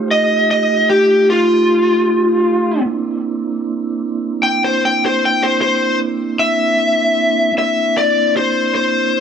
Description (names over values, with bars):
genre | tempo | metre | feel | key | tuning
blues | 51 BPM (dotted quarters) | 12/8 | straight | C mixolydian | A4 = 440 Hz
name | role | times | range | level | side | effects
lead guitar through a small cranked amp | melody | 0.0-9.2 s | F4 to G5 | -14 LUFS | left 2 dB | overdrive
mellow tonewheel organ | sustained chords | 0.0-9.2 s | A3 to G4 | -19 LUFS | right 5 dB | slow rotary speaker
room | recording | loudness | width
moderate club reverb, RT60 0.8 s | none | -13 LUFS | side -7 dB against mid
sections
0.0-9.2 A section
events
lead electric guitar solo 0.0-9.2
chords
0.0 F9; 2.8 C9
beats
0.48 1.66 | 2.84 4.02 5.20 6.37 | 7.55 8.73